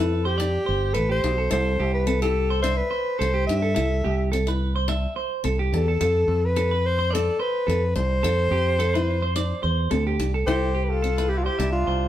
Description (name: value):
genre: highlife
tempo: 107 BPM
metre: 4/4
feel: swing 54% on 16ths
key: C major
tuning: A4 = 440 Hz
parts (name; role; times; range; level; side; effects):
- breathy alto saxophone; melody; 0.0-12.1 s; F4 to E5; -25 LUFS; left 2 dB; none
- picked steel-string acoustic guitar; accompaniment; 0.0-11.8 s; A3 to F4; -30 LUFS; left 4 dB; none
- clean electric guitar; arpeggios; 0.0-12.1 s; G4 to E5; -28 LUFS; right 4 dB; none
- fingered electric bass; bass; 0.0-12.1 s; G1 to G2; -24 LUFS; equal; none
- breathy trumpet; second line; 10.5-12.1 s; D4 to G4; -33 LUFS; left 5 dB; none
room: moderate large studio reverb, RT60 1.0 s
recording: band playing live in one room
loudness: -21 LUFS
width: side -12 dB against mid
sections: 0.0-10.5 A section; 10.5-12.1 B section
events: none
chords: 0.0 F; 1.5 C; 6.0 F; 10.5 C